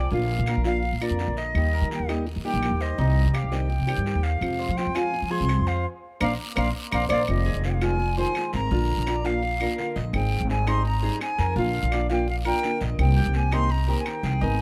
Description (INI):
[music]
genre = latin, Cuban son and guajira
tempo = 168 BPM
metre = 4/4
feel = straight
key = unclear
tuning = A4 = 444 Hz
[part]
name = bright silver concert flute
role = melody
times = 0.0-14.6 s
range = D5 to C6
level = -32 LUFS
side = equal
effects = none
[part]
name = nylon-string guitar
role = accompaniment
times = 0.0-14.6 s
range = C3 to Bb4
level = -33 LUFS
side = equal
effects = none
[part]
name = Cuban tres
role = arpeggios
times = 0.0-14.6 s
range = Eb4 to F5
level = -34 LUFS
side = equal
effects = none
[part]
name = upright bass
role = bass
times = 0.0-14.6 s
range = F1 to F3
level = -27 LUFS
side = equal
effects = none
[part]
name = guiro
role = percussion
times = 0.1-14.6 s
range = none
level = -42 LUFS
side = equal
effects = none
[part]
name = claves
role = percussion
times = 0.5-14.2 s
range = none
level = -36 LUFS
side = equal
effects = none
[sound]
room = light reverb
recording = dark, warm production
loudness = -25 LUFS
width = mono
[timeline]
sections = 0.0-7.3 A section; 7.3-14.6 B section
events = band accent 5.9-7.3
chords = 0.1 Bb; 1.6 Eb; 3.0 Cm; 4.4 Fm; 5.9 Bbadd9; 7.3 Fm7; 8.7 Bb; 10.1 Abmaj7; 11.6 Bb; 13.0 Cm7